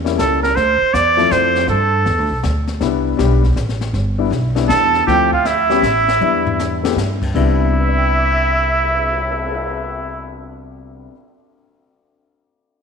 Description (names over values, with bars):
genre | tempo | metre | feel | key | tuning
jazz, small-group swing and bop | 159 BPM | 3/4 | swing 65% on 8ths | C major | A4 = 441 Hz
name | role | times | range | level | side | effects
warm grand piano | accompaniment | 0.0-11.4 s | C3 to G6 | -21 LUFS | left 11 dB | none
upright bass | bass | 0.0-11.1 s | G1 to G2 | -20 LUFS | equal | none
jazz brush drum kit | drums | 0.1-9.5 s | brushed snare drum, crash cymbal, cymbal swell, hi-hat, kick drum, snare drum, toms | -26 LUFS | left 5 dB | none
trumpet with straight mute | melody | 0.2-2.4, 4.7-10.4 s | E4 to D5 | -18 LUFS | left 1 dB | none
mellow trumpet | second line | 0.2-2.4, 4.7-10.4 s | A4 to A5 | -19 LUFS | right 8 dB | none
room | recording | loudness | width
moderate echo chamber reverb, RT60 1.7 s | 1960s-style stereo with parts hard left and right | -14 LUFS | side -6 dB against mid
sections
0.0-5.1 A section; 5.1-7.3 B section; 7.3-9.6 C section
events
drum fill 6.2-7.0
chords
0.0 A7b9; 0.6 Dm9; 1.7 Gsus2; 2.8 Cmaj9; 5.1 Dm9; 5.8 A5; 6.2 Em7; 7.0 N.C.; 7.3 Cmaj9